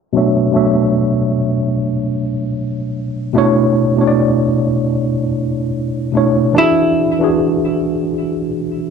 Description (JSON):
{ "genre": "lo-fi hip hop", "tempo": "75 BPM", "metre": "4/4", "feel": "swing 61% on 16ths", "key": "B dorian", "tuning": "A4 = 439 Hz", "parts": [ { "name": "tine electric piano", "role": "accompaniment", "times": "0.1-8.9 s", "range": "B2 to E5", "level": "-14 LUFS", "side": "equal", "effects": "overdrive, fast stereo tremolo, cassette tape" }, { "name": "vintage hollow-body jazz guitar", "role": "melody", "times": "6.6-8.9 s", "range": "E4", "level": "-17 LUFS", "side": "left 1 dB", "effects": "tape echo" } ], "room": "wet small room reverb, RT60 0.6 s", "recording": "low-pass filter", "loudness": "-13 LUFS", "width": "side -6 dB against mid", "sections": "0.1-3.3 A section; 3.3-8.9 B section", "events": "filter sweep 0.1-3.3", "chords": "0.1 Bm11; 6.5 E9", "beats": "| 0.14 0.94 1.74 2.54 | 3.34 4.14 4.94 5.74 | 6.54 7.34 8.14" }